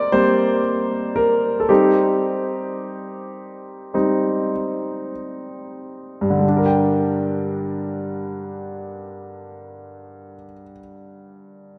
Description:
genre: pop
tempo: 45-59 BPM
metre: 4/4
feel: straight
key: G minor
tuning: A4 = 440 Hz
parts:
  - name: clear grand piano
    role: accompaniment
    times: 0.0-11.8 s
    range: G2 to G5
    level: -22 LUFS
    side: equal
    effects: none
room: wet lush hall reverb, RT60 2.7 s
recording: rough home demo mix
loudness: -20 LUFS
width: mono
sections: 0.0-6.4 A section; 6.4-11.7 B section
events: slowing down 0.0-6.4; grand piano solo 0.0-6.4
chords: 0.0 Gmadd11; 1.7 Cm; 6.4 Gm

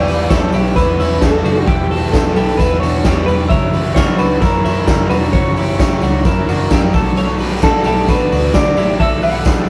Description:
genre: jangly indie pop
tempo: 131 BPM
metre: 4/4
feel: straight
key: E dorian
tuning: A4 = 441 Hz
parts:
  - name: electric guitar through a small old amp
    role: melody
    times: 0.0-9.7 s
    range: G4 to F#5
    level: -21 LUFS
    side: equal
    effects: none
  - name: glockenspiel with rubber mallets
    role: second line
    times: 0.0-9.7 s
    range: G5 to F#6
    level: -30 LUFS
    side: equal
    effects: none
  - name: raw garage guitar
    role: accompaniment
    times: 0.0-9.7 s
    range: B2 to B4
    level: -27 LUFS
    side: equal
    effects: overdrive
  - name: twelve-string electric guitar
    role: arpeggios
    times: 0.0-9.7 s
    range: B3 to C#5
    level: -24 LUFS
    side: equal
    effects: none
  - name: vintage muted picked electric bass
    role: bass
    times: 0.0-9.7 s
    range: E1 to B2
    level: -23 LUFS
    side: equal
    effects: none
  - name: raw garage drum kit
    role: drums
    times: 0.1-9.6 s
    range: hi-hat, kick drum, ride cymbal, snare drum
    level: -17 LUFS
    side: equal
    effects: none
  - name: tambourine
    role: percussion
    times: 0.1-9.6 s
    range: none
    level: -41 LUFS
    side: equal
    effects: none
room: moderate stone room reverb, RT60 1.1 s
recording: rough rehearsal-room recording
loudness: -14 LUFS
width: mono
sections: 0.0-9.7 A section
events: none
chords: 0.0 Em; 3.5 F#7; 6.9 Bm7

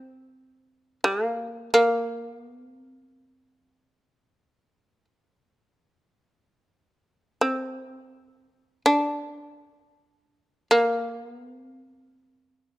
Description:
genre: japanese traditional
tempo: free time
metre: none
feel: none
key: unclear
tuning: A4 = 439 Hz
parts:
  - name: shamisen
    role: solo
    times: 0.0-12.8 s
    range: Bb3 to D4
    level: -21 LUFS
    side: equal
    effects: none
room: light reverb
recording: close, detailed microphones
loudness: -22 LUFS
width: side -17 dB against mid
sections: 0.0-12.8 A section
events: none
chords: none

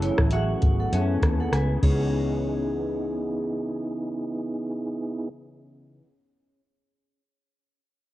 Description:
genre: indie pop, bedroom pop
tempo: 100 BPM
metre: 4/4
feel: swing 55% on 16ths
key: C# minor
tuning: A4 = 439 Hz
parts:
  - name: clean electric guitar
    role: melody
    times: 0.0-6.0 s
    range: C#4 to F#4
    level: -34 LUFS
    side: left 2 dB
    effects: lush chorus, low-pass filter, cassette tape, analog delay
  - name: vibraphone with hard mallets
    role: second line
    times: 0.0-3.9 s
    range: E4 to G#5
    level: -32 LUFS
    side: right 1 dB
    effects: lush chorus, cassette tape, analog delay
  - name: electric guitar through a small old amp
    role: accompaniment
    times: 0.0-6.1 s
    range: F#2 to A4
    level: -35 LUFS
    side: left 3 dB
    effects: ensemble chorus, vibrato effect, low-pass filter, cassette tape
  - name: mellow tonewheel organ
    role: accompaniment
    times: 0.0-5.3 s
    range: A3 to G#4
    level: -31 LUFS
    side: right 2 dB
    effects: fast rotary speaker, low-pass filter, cassette tape
  - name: vintage muted fingered electric bass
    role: bass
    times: 0.0-6.0 s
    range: G#1 to F#2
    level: -26 LUFS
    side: equal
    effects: none
  - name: soft vintage rhythm box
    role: drums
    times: 0.0-2.0 s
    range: crash cymbal, hi-hat, kick drum, rim click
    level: -24 LUFS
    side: equal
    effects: cassette tape
room: light reverb, digital ambience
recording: home recording on cassette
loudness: -23 LUFS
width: side -15 dB against mid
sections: 0.0-2.1 A section; 2.1-4.5 B section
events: filter sweep 0.0-2.1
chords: 0.0 F#m11; 1.8 C#m9

